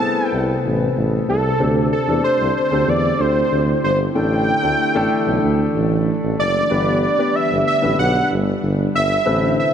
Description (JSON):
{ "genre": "pop", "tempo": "94 BPM", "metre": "4/4", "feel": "straight", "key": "unclear", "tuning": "A4 = 440 Hz", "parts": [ { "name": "wide unison lead", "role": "melody", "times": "0.0-9.7 s", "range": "A4 to A5", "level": "-20 LUFS", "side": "right 1 dB", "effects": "none" }, { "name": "dark grand piano", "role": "accompaniment", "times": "0.0-9.7 s", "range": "A3 to B4", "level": "-22 LUFS", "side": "left 3 dB", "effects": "none" }, { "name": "ethereal airy pad", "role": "sustained chords", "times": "0.0-9.7 s", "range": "C3 to B4", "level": "-24 LUFS", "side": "right 1 dB", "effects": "ensemble chorus, built-in reverb" }, { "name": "warm tuba", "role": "bass", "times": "0.3-9.6 s", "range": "F#1 to E2", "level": "-21 LUFS", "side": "right 1 dB", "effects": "none" } ], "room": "light reverb", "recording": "none", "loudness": "-15 LUFS", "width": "side -8 dB against mid", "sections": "0.0-9.7 A section", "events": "none", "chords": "0.0 Amadd9; 1.6 D7sus4; 4.2 Asus4; 6.7 G" }